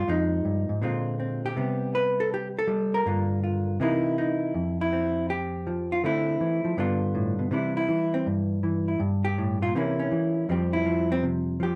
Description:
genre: solo jazz.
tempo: 161 BPM.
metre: 4/4.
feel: swing 65% on 8ths.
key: C major.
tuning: A4 = 440 Hz.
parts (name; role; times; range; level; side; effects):
hollow-body jazz guitar; solo; 0.0-11.8 s; F2 to B4; -26 LUFS; equal; none.
room: light reverb.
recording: lossy compression artefacts.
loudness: -26 LUFS.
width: mono.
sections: 0.0-7.5 A section; 7.5-11.8 B section.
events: hollow-body jazz guitar solo 7.5-11.8.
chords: 0.1 Fm7; 0.8 Bb9; 1.6 C5; 3.0 Gm7; 3.8 C7#9; 4.5 Fsus2; 6.0 Dm9; 6.8 G7; 7.5 Cadd9; 9.0 Gmadd9; 9.7 C7b9; 10.5 Fsus2.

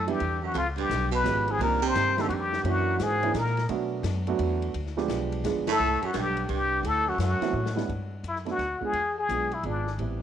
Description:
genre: jazz, small-group swing and bop.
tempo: 172 BPM.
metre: 3/4.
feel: swing 64% on 8ths.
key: G major.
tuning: A4 = 439 Hz.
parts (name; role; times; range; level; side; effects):
trumpet with plunger mute; melody; 0.0-3.7, 5.7-9.9 s; D4 to C5; -27 LUFS; left 3 dB; none.
clear baritone saxophone; second line; 0.0-3.6, 5.7-7.7 s; E#2 to C3; -32 LUFS; right 10 dB; none.
upright bass; bass; 0.0-10.2 s; G1 to B2; -31 LUFS; left 1 dB; none.
dark concert grand piano; accompaniment; 0.1-10.2 s; Eb3 to Ab4; -31 LUFS; right 8 dB; none.
open jazz drum kit; drums; 0.1-10.1 s; hi-hat, kick drum, ride cymbal, snare drum; -39 LUFS; left 9 dB; none.
room: moderate spring reverb, RT60 1.9 s, studio ambience.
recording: 1960s-style stereo with parts hard left and right.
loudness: -24 LUFS.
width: side -9 dB against mid.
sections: 0.0-7.9 A section; 7.9-10.2 B section.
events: band accent 5.6; drum fill 7.5-7.9.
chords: 0.0 Em9; 0.6 C#7#11; 1.6 Cm9; 2.7 F#7b13; 3.7 Bm7; 4.8 G7b9; 5.8 C5; 6.8 D69; 7.9 Gmaj7; 8.9 E7b9.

